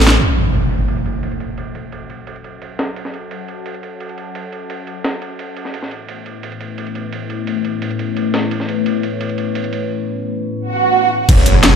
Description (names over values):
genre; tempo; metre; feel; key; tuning
dark technical drum and bass; 173 BPM; 4/4; straight; F# minor; A4 = 440 Hz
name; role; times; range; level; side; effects
dark analog pad; sustained chords; 0.0-11.8 s; A3 to A5; -22 LUFS; left 4 dB; chorus, phaser, sidechain pumping
phased detuned saw bass; bass; 0.0-0.2, 11.3-11.8 s; F#1 to A1; -13 LUFS; equal; phaser, tube saturation
breakbeat sampler-style drum kit; drums; 0.0-11.7 s; ride cymbal, snare drum; -26 LUFS; right 2 dB; high-pass filter on cymbals, low-pass filter on cymbals, high-pass filter on snare, low-pass filter on snare
drum and bass drum kit; drums; 0.0-0.2, 11.3-11.8 s; crash cymbal, hi-hat, rim click, snare drum; -15 LUFS; equal; overdrive
impact and swell; sound effects; 0.2-1.6, 10.7-11.8 s; none; -16 LUFS; right 2 dB; none
electronic kick drum; drums; 11.3-11.4 s; none; -10 LUFS; equal; none
room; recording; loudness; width
moderate lush hall reverb, RT60 1.7 s, digital ambience; dark, warm production; -17 LUFS; side -7 dB against mid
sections
0.2-11.3 A section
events
break 0.0; drum fill 0.0; band accent 0.1; impact 0.2-1.6, 11.3-11.8; filter sweep on analog synth pad 0.2-11.3; swell 10.7-11.3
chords
0.2 F#m; 5.7 Aadd9